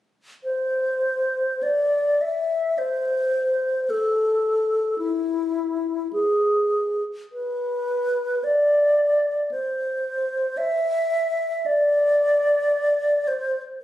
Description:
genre	classical, free, expressive piece for unaccompanied alto flute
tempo	49-58 BPM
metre	4/4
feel	rubato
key	unclear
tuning	A4 = 439 Hz
part	alto flute	solo	0.4-13.8 s	E4 to E5	-20 LUFS	equal	none
room	moderate recital hall reverb, RT60 1.3 s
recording	recorded on a phone in the room, club reverb, compression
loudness	-20 LUFS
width	side -13 dB against mid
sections	0.4-13.8 A section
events	none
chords	none

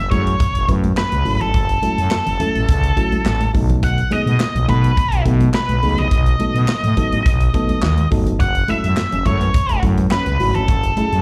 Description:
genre	early-eighties boogie funk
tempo	105 BPM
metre	4/4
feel	straight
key	F# dorian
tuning	A4 = 441 Hz
part	octave-fuzz lead guitar	melody	0.0-11.2 s	A4 to F#5	-24 LUFS	equal	distortion, slapback echo
part	growling FM bass	bass	0.0-11.2 s	F#1 to B2	-20 LUFS	equal	none
part	mellow FM electric piano	accompaniment	0.1-11.2 s	F#3 to B4	-26 LUFS	equal	chorus, slapback echo
part	modern studio drum kit	drums	0.1-11.2 s	handclaps, hi-hat, kick drum, snare drum	-22 LUFS	equal	none
part	congas	percussion	0.1-11.1 s	none	-29 LUFS	equal	slapback echo
part	electric guitar at the edge of break-up	riff	8.4-11.1 s	A3 to F#4	-34 LUFS	equal	lush chorus, slapback echo
room	light reverb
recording	live gig heard through the venue's PA, club reverb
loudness	-17 LUFS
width	mono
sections	0.0-11.2 A section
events	none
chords	0.0 F#m7; 3.5 B7; 8.4 F#m7

